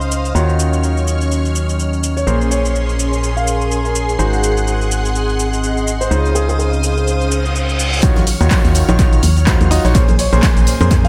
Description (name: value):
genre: piano house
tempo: 125 BPM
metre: 4/4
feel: swing 57% on 16ths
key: unclear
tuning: A4 = 441 Hz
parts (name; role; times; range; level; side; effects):
- string machine, violins; sustained chords; 0.0-11.1 s; Db4 to F6; -26 LUFS; equal; ensemble chorus, sidechain pumping
- clear concert grand piano; riff; 0.0-11.1 s; Bb2 to Eb5; -24 LUFS; equal; vintage 12-bit sampler grit, sidechain pumping, tape echo
- organ-like FM bass; bass; 0.0-11.1 s; Ab1 to F2; -19 LUFS; equal; sidechain pumping
- punchy analog drum machine; drums; 0.0-11.1 s; handclaps, hi-hat, shaker; -26 LUFS; equal; tape echo
- warbly tape-like pad; texture; 0.0-8.0 s; Gb3 to C6; -26 LUFS; equal; chorus, built-in reverb, sidechain pumping
- warm concert grand piano; melody; 2.2-6.7, 9.8-11.1 s; Ab4 to F5; -27 LUFS; equal; tape echo
- reverse cymbal and impact; sound effects; 7.3-9.9 s; none; -27 LUFS; equal; none
- electronic kick drum; drums; 8.0-11.0 s; none; -16 LUFS; equal; none
- unplugged drum kit; drums; 8.0-11.0 s; hi-hat, snare drum; -35 LUFS; equal; none
- tambourine and congas; percussion; 8.0-11.0 s; none; -26 LUFS; equal; none
room: light reverb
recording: echo-heavy mix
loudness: -15 LUFS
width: mono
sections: 0.0-8.0 A section; 8.0-11.1 B section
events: reverse cymbal 7.3-8.0; drop 8.0-11.1; impact 8.0-9.9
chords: 0.3 Ebm9; 2.3 Bbm9; 4.2 Ab7; 6.1 Dbmaj9; 8.0 Ebm9; 9.9 Bbm9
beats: | 0.35 0.83 1.31 1.79 | 2.27 2.75 3.23 3.71 | 4.19 4.67 5.15 5.63 | 6.11 6.59 7.07 7.55 | 8.03 8.51 8.99 9.47 | 9.95 10.43 10.91